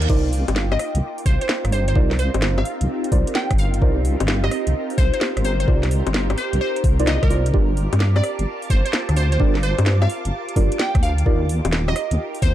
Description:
UK garage, two-step garage; 129 BPM; 4/4; swing 67% on 16ths; C dorian; A4 = 440 Hz
glassy wavetable pluck; melody; 0.0-12.5 s; Bb4 to G5; -27 LUFS; equal; chorus, dub echo
soft string machine; sustained chords; 0.0-12.5 s; Eb4 to D6; -32 LUFS; equal; phaser, ensemble chorus, sidechain pumping
deep mellow chord stab; stabs; 0.0-11.5 s; D4 to D5; -26 LUFS; right 2 dB; chorus, dub echo
deep soft wobble bass; bass; 0.0-12.5 s; Eb1 to G2; -20 LUFS; equal; chorus
garage drum kit; drums; 0.0-12.5 s; bongos, crash cymbal, hi-hat, rim click, snare drum; -25 LUFS; left 2 dB
granular cloud pad; texture; 0.0-12.5 s; Bb3 to D6; -32 LUFS; right 3 dB; built-in reverb, sidechain pumping
electronic kick drum; drums; 0.1-12.5 s; -18 LUFS; equal
little or no reverb; dark, warm production; -17 LUFS; side -12 dB against mid
0.0-12.5 A section
0.1 Cm11; 7.5 Gm7; 11.3 Ebmaj9

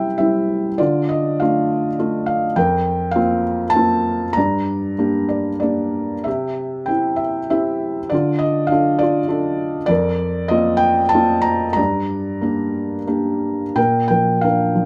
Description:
classical, lyrical solo piano; 86-103 BPM; 3/4; rubato; A4 = 440 Hz
felt-muted upright piano; solo; 0.0-14.9 s; F2 to Bb5; -19 LUFS; equal
light reverb; -19 LUFS; mono
0.0-13.8 A section; 13.8-14.9 B section
0.0 C; 0.8 Dm; 2.6 Fsus4; 4.4 Gm; 6.3 C; 8.1 Dm; 9.9 Fsus4; 11.8 Gm; 13.8 Bb

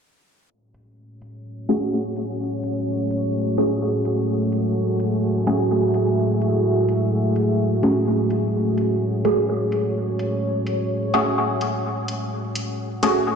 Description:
dub techno; 127 BPM; 4/4; straight; F# minor; A4 = 441 Hz
deep dark ambient pad; sustained chords; 1.6-13.4 s; A3 to F#5; -21 LUFS; equal; chorus, built-in reverb
electronic hi-hat; drums; 0.7-13.1 s; -34 LUFS; equal; low-pass filter on hats
filtered dub chord stab; stabs; 1.7-13.2 s; A3 to G#4; -24 LUFS; equal; phaser, dub echo
moderate huge ambient reverb, RT60 4.8 s; played on a big sound system in a bare room, stone room reverb, low-pass filter; -19 LUFS; side -6 dB against mid
0.5-13.4 A section
filter sweep on drum 0.5-13.4; filter sweep 0.5-13.4
0.5 F#madd9

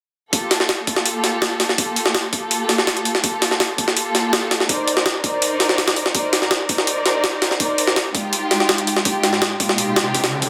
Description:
drum and bass, jungle; 165 BPM; 4/4; straight; G minor; A4 = 438 Hz
dark studio string section; sustained chords; 0.3-10.5 s; Ab3 to D5; -24 LUFS; equal
jungle sampler-style drum kit; drums; 0.3-10.5 s; hi-hat, kick drum, snare drum; -20 LUFS; equal; high-pass filter on kick, small room reverb, high-pass filter on hats, high-pass filter on snare
riser; sound effects; 9.3-10.5 s; -31 LUFS; equal
moderate lush hall reverb, RT60 1.6 s, digital ambience; dense, heavily limited modern master; -19 LUFS; mono
0.3-10.5 A section
riser 9.4-10.5
0.3 Gm9; 4.7 Cm9; 8.3 Fm9

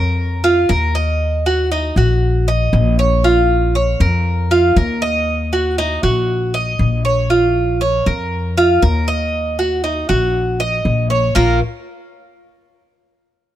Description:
latin, Cuban son and guajira; 118 BPM; 4/4; straight; Bb minor; A4 = 440 Hz
Cuban tres; arpeggios; 0.0-11.6 s; Bb3 to Eb5; -16 LUFS; right 2 dB
upright bass; bass; 0.0-11.6 s; Bb1 to F2; -17 LUFS; left 1 dB
little or no reverb; close, detailed microphones; -14 LUFS; side -12 dB against mid
0.0-3.2 A section; 3.2-11.4 B section; 11.4-13.4 C section
0.0 Bb5; 1.2 Ebm; 3.2 Bb5; 5.3 Ebm; 7.3 Bbm; 9.3 Ebm; 11.4 Bb5

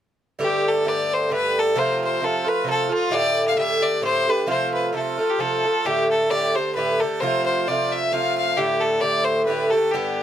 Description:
celtic folk; 132 BPM; 3/4; swing 55% on 8ths; G mixolydian; A4 = 443 Hz
clear fiddle; melody; 0.4-10.2 s; F4 to F5; -22 LUFS; left 2 dB
Irish bouzouki; accompaniment; 0.4-10.2 s; G2 to G4; -22 LUFS; right 1 dB
light reverb; close, detailed microphones; -19 LUFS; side -10 dB against mid
0.4-10.2 A section
0.4 Gsus2; 1.8 F; 3.1 Gsus2; 4.5 F; 5.8 Gsus2; 7.2 F; 8.6 Gsus2

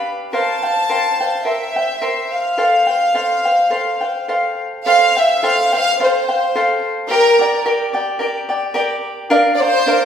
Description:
mexican folk, mariachi; 107 BPM; 4/4; straight; F major; A4 = 440 Hz
warm symphonic violin section; melody; 0.0-10.1 s; Bb4 to A5; -16 LUFS; equal
cavaquinho; accompaniment; 0.0-10.1 s; D4 to G5; -17 LUFS; left 1 dB
wet large studio reverb, RT60 1.4 s; band playing live in one room; -14 LUFS; side -8 dB against mid
0.0-4.9 A section; 4.9-10.1 A section
0.3 C7sus4; 1.5 C7; 2.6 Fadd9; 7.1 Gm; 9.3 Bb

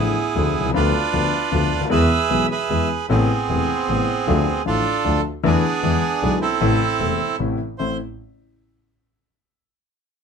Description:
tango; 153 BPM; 3/4; rubato; A harmonic minor; A4 = 440 Hz
bandoneon; melody; 0.0-8.0 s; B3 to E5; -21 LUFS; right 6 dB
clear concert grand piano; accompaniment; 0.0-8.0 s; E1 to G#4; -22 LUFS; left 5 dB
clear double bass; bass; 0.0-8.0 s; E1 to E2; -24 LUFS; right 1 dB
light reverb; close, detailed microphones; -17 LUFS; side -6 dB against mid
0.0-7.8 A section; 7.8-9.0 B section
0.0 Dmadd9; 0.7 Bdim/D; 1.9 E; 3.1 Amadd9; 4.3 Dm; 5.4 E7sus4; 5.8 E7; 6.6 Am

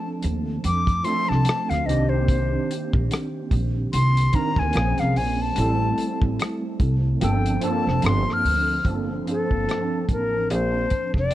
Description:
R&B, neo-soul; 73 BPM; 4/4; swing 58% on 16ths; G minor; A4 = 440 Hz
breathy silver concert flute; melody; 0.0-11.3 s; A4 to F6; -25 LUFS; left 3 dB; plate reverb
overdriven tine electric piano; accompaniment; 0.0-11.3 s; Eb3 to A5; -26 LUFS; right 2 dB; ensemble chorus
upright bass; bass; 0.2-11.3 s; F1 to F2; -23 LUFS; equal
warm soul drum kit; drums; 0.2-11.3 s; hi-hat, kick drum, rim click; -25 LUFS; equal
light reverb; worn, warbling old tape, cassette tape, warbly pitch drift; -20 LUFS; side -14 dB against mid
0.0-8.9 A section; 8.9-11.3 B section
flute solo 0.0-8.9; kick muted 7.2-8.9
0.0 Dm7; 1.9 Cm9; 4.7 Bbm7; 5.6 Am7; 7.2 Gm11

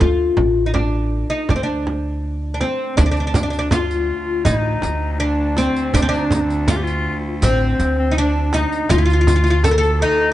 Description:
Turkish makam ensemble; 81 BPM; 4/4; straight; D makam kurdi; A4 = 440 Hz
oud; melody; 0.0-10.3 s; C4 to Bb4; -20 LUFS; left 1 dB
upright bass; bass; 0.0-10.0 s; A1 to D2; -20 LUFS; equal
frame drum; percussion; 0.0-9.8 s; -21 LUFS; right 2 dB
clear clarinet; second line; 2.5-10.3 s; C4 to A4; -24 LUFS; left 3 dB
rich cello; drone; 3.0-10.3 s; D2; -28 LUFS; equal
riq; percussion; 3.0-9.9 s; -30 LUFS; right 2 dB
light reverb; nothing above 10.3 kHz; -16 LUFS; side -14 dB against mid
0.0-3.0 A section; 3.0-10.3 B section

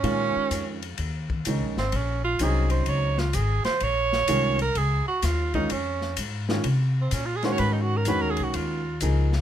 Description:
modal jazz; 127 BPM; 4/4; swing 66% on 8ths; Bb minor; A4 = 441 Hz
warm tenor saxophone; second line; 0.0-9.0 s; C4 to Db5; -26 LUFS; right 5 dB
warm upright piano; accompaniment; 0.0-9.3 s; Eb3 to Ab4; -28 LUFS; right 1 dB
upright bass; bass; 0.0-9.4 s; Ab1 to C3; -26 LUFS; left 1 dB
open jazz drum kit; drums; 0.0-9.4 s; hi-hat, kick drum, ride cymbal, snare drum; -33 LUFS; left 4 dB
light reverb; close, detailed microphones; -22 LUFS; side -10 dB against mid
0.0-9.4 A section
tenor saxophone solo 0.0-9.4
0.0 Bbm9; 7.6 Ab7sus2

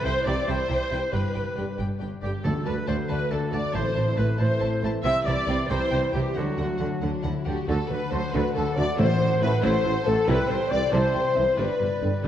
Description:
cinematic, heroic adventure film score; 92 BPM (dotted quarters); 6/8; straight; D mixolydian; A4 = 440 Hz
clear oboe; second line; 0.0-7.0 s; F#4 to E5; -36 LUFS; equal
warm symphonic viola section; accompaniment; 0.0-12.3 s; D3 to E5; -31 LUFS; right 1 dB
concert harp; arpeggios; 0.0-12.3 s; G2 to A5; -34 LUFS; left 8 dB
mellow trumpet section; stabs; 0.0-12.2 s; F#4 to E5; -32 LUFS; right 1 dB
rich symphonic cello section; bass; 0.0-12.3 s; D2 to D3; -31 LUFS; right 2 dB
rich chamber violin section; melody; 0.1-12.2 s; G4 to A5; -36 LUFS; left 4 dB
warm symphonic violin section; second line; 0.1-12.2 s; D4 to E5; -37 LUFS; left 2 dB
rich symphonic double bass section; bass; 0.1-12.3 s; G1 to D2; -30 LUFS; right 2 dB
dark French horn section; sustained chords; 0.3-12.2 s; A3 to D5; -30 LUFS; left 2 dB
mellow trombone section; sustained chords; 0.3-12.1 s; D3 to A3; -35 LUFS; right 1 dB
timpani; percussion; 2.4-4.4, 9.0-9.6 s; A2 to D3; -30 LUFS; left 1 dB
mellow hollow concert flute; second line; 7.7-12.3 s; D5 to A5; -35 LUFS; left 2 dB
mellow tuba; bass; 7.7-12.3 s; G1 to D2; -30 LUFS; right 2 dB
wet scoring stage reverb, RT60 2.0 s; worn, warbling old tape, cassette tape, warbly pitch drift; -22 LUFS; side -10 dB against mid
0.0-7.7 A section; 7.7-12.3 B section
0.0 C; 1.1 G; 2.4 D; 3.7 Am; 5.0 C; 6.4 D; 9.0 Am; 10.3 C; 11.6 G

